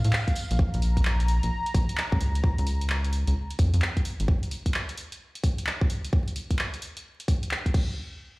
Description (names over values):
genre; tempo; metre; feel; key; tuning
UK garage, two-step garage; 130 BPM; 4/4; swing 64% on 16ths; unclear; A4 = 441 Hz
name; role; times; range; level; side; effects
warm analog pad; sustained chords; 0.0-4.3 s; F5 to Bb5; -35 LUFS; equal; chorus, sidechain pumping
rubbery square bass; bass; 0.0-4.3 s; Ab1 to A2; -24 LUFS; equal; sidechain pumping
punchy analog drum machine; drums; 0.0-7.9 s; crash cymbal, handclaps, hi-hat; -32 LUFS; equal; none
tambourine; percussion; 0.0-0.6 s; none; -42 LUFS; right 1 dB; none
electronic kick drum; drums; 0.3-7.9 s; none; -24 LUFS; equal; none
room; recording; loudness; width
digital ambience; played on a big sound system in a bare room, large studio reverb, vinyl crackle; -24 LUFS; side -23 dB against mid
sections
0.0-8.0 A section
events
none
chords
0.0 F; 0.6 N.C.